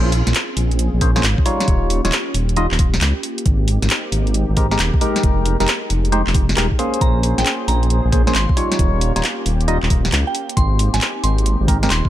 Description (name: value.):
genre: UK garage, two-step garage.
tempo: 135 BPM.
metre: 4/4.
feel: swing 66% on 16ths.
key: Bb dorian.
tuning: A4 = 442 Hz.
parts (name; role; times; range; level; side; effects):
warm analog pad; sustained chords; 0.0-12.1 s; Ab3 to C5; -28 LUFS; equal; chorus, sidechain pumping.
percussive organ stab; stabs; 0.0-11.9 s; G3 to Eb5; -22 LUFS; equal; chorus, tape echo.
dark detuned saw bass; bass; 0.0-12.0 s; Eb1 to Db2; -18 LUFS; equal; none.
garage drum kit; drums; 0.1-12.0 s; handclaps, hi-hat, snare drum; -21 LUFS; equal; none.
electronic kick drum; drums; 1.0-12.1 s; none; -17 LUFS; equal; none.
soft synth bell; melody; 7.0-12.1 s; G5 to C6; -26 LUFS; right 2 dB; chorus, ping-pong delay.
room: digital ambience.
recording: none.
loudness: -15 LUFS.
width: side -13 dB against mid.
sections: 0.0-12.1 A section.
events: none.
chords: 0.0 Bbm9; 1.7 Eb9; 3.5 Abmaj9; 5.2 Fm11; 7.0 Bbm9; 8.8 Eb9; 10.6 Abmaj9.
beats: 0.35 0.79 1.24 | 1.68 2.12 2.57 3.01 | 3.46 3.90 4.35 4.79 | 5.24 5.68 6.12 6.57 | 7.01 7.46 7.90 8.35 | 8.79 9.23 9.68 10.12 | 10.57 11.01 11.46 11.90.